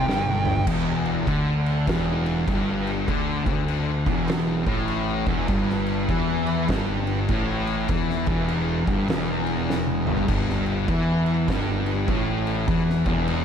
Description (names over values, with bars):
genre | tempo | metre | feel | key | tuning
stoner and doom metal | 100 BPM | 4/4 | swing 64% on 8ths | E minor | A4 = 440 Hz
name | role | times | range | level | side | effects
fuzz lead guitar | melody | 0.0-0.6 s | G5 | -28 LUFS | right 1 dB | distortion, analog delay
thick fuzz guitar | riff | 0.0-13.4 s | E2 to E3 | -26 LUFS | left 8 dB | distortion
thick fuzz guitar | riff | 0.0-13.4 s | E2 to E3 | -27 LUFS | right 10 dB | distortion
fuzz fingered electric bass | bass | 0.0-13.4 s | E1 to E2 | -28 LUFS | equal | overdrive
oversized low-tuned drum kit | drums | 0.1-13.4 s | crash cymbal, kick drum, snare drum, toms | -27 LUFS | equal | none
room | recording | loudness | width
light reverb | none | -21 LUFS | side -8 dB against mid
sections
0.7-13.4 A section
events
drum fill 0.1-0.7, 9.7-10.3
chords
0.0 G5; 0.7 Em; 5.5 Emadd11